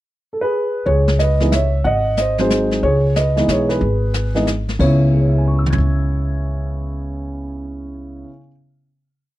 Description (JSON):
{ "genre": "jazz piano trio", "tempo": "183 BPM", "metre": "3/4", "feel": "swing 64% on 8ths", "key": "C# minor", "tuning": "A4 = 440 Hz", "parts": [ { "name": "dark upright piano", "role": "melody", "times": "0.3-8.5 s", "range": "C#3 to G#6", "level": "-19 LUFS", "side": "right 1 dB", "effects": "none" }, { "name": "upright bass", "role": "bass", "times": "0.9-8.2 s", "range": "G#1 to C#2", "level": "-18 LUFS", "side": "equal", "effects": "none" }, { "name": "jazz brush drum kit", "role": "drums", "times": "0.9-5.9 s", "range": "brushed snare drum, crash cymbal, hi-hat, kick drum, snare drum, toms", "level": "-23 LUFS", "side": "equal", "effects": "none" } ], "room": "small room reverb", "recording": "dry, close 1970s-style studio recording", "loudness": "-15 LUFS", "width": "side -15 dB against mid", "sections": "0.0-0.9 pickup bar; 0.9-4.8 A section; 4.8-6.8 final chord", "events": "none", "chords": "0.0 N.C.; 0.9 C#m9; 1.8 G#7; 2.8 C#m9; 4.8 C#m7" }